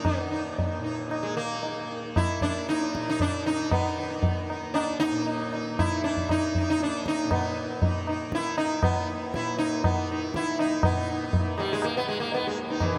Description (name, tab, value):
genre	indian classical, Hindustani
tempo	118 BPM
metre	7/4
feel	straight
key	unclear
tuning	A4 = 439 Hz
part	sitar	melody	0.0-13.0 s	Fb3 to Fb4	-30 LUFS	equal	analog delay
part	tanpura	drone	0.0-13.0 s	Eb2 to Eb3	-38 LUFS	equal	none
part	tabla	percussion	0.0-13.0 s	none	-32 LUFS	equal	none
room	wet huge ambient reverb, RT60 7.6 s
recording	dreamy mix soaked in reverb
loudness	-28 LUFS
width	mono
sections	0.0-10.8 A section; 10.8-13.0 B section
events	speeding up 0.0-13.0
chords	none